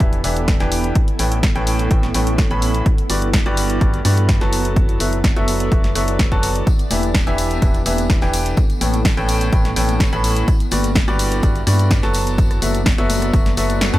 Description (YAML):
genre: piano house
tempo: 126 BPM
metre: 4/4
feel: straight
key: E dorian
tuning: A4 = 440 Hz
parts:
  - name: clear upright piano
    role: riff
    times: 0.0-14.0 s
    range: G2 to B5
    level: -22 LUFS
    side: equal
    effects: sidechain pumping, dub echo
  - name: organ-like FM bass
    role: bass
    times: 0.0-14.0 s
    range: E1 to G2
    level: -21 LUFS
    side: equal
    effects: tube saturation, sidechain pumping
  - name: electronic kick drum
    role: drums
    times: 0.0-13.4 s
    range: none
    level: -16 LUFS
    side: equal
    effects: none
  - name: punchy analog drum machine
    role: drums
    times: 0.0-14.0 s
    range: hi-hat, rim click, snare drum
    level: -23 LUFS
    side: equal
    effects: none
  - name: granular cloud pad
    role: texture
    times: 0.0-14.0 s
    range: B3 to D5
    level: -27 LUFS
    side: right 2 dB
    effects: built-in reverb, sidechain pumping
  - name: tambourine and congas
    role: percussion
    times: 6.7-14.0 s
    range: none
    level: -29 LUFS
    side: left 8 dB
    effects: none
room: digital ambience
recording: none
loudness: -15 LUFS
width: side -16 dB against mid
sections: 0.0-14.0 A section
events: kick drops out 13.8; band accent 13.8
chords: 0.0 Em7; 1.0 A9; 2.9 Gmaj7; 4.5 B7sus4/F#; 6.7 Em7; 8.6 A9; 10.5 Gmaj7; 12.1 B7sus4/F#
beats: 0.00 0.48 | 0.95 1.43 1.91 2.38 | 2.86 3.34 3.81 4.29 | 4.76 5.24 5.72 6.19 | 6.67 7.14 7.62 8.10 | 8.57 9.05 9.53 10.00 | 10.48 10.96 11.43 11.91 | 12.38 12.86 13.34 13.81